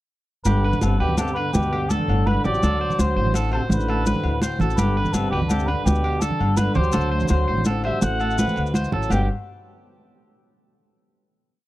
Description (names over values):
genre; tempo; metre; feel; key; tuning
highlife guitar band; 111 BPM (dotted quarters); 12/8; straight; G major; A4 = 439 Hz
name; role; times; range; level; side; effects
trumpet with cup mute; melody; 0.4-9.3 s; G4 to G5; -26 LUFS; left 1 dB; none
clear trombone; second line; 0.5-9.3 s; B2 to A3; -30 LUFS; right 3 dB; none
nylon-string guitar; accompaniment; 0.5-9.3 s; G2 to G4; -30 LUFS; left 3 dB; none
electric guitar at the edge of break-up; arpeggios; 0.5-9.3 s; G4 to C5; -30 LUFS; right 3 dB; slapback echo
upright bass; bass; 0.5-9.3 s; G1 to D2; -23 LUFS; equal; none
agogo bells; percussion; 0.5-9.2 s; none; -35 LUFS; left 3 dB; none
congas; percussion; 0.5-9.3 s; none; -24 LUFS; right 1 dB; none
maracas; percussion; 0.5-9.3 s; none; -35 LUFS; left 6 dB; none
room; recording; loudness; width
small room ambience; dry, close 1970s-style studio recording; -19 LUFS; side -16 dB against mid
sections
0.5-9.1 A section; 9.1-11.3 final chord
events
none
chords
0.5 G; 2.6 D7; 4.8 G; 6.9 D7; 9.1 G5